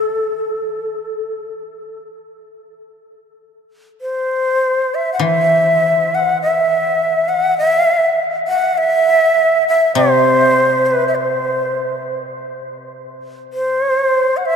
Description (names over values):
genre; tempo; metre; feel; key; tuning
japanese traditional, Japanese chamber music; 45-52 BPM; 4/4; rubato; unclear; A4 = 438 Hz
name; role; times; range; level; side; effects
breathy shakuhachi; melody; 0.0-14.6 s; A4 to F#5; -14 LUFS; equal; none
koto; accompaniment; 5.2-13.3 s; C3 to E3; -22 LUFS; left 3 dB; none
room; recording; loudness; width
wet cathedral reverb, RT60 5.8 s; in a vast, echoing space; -13 LUFS; side -7 dB against mid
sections
0.0-2.7 A section; 2.7-14.6 B section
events
none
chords
none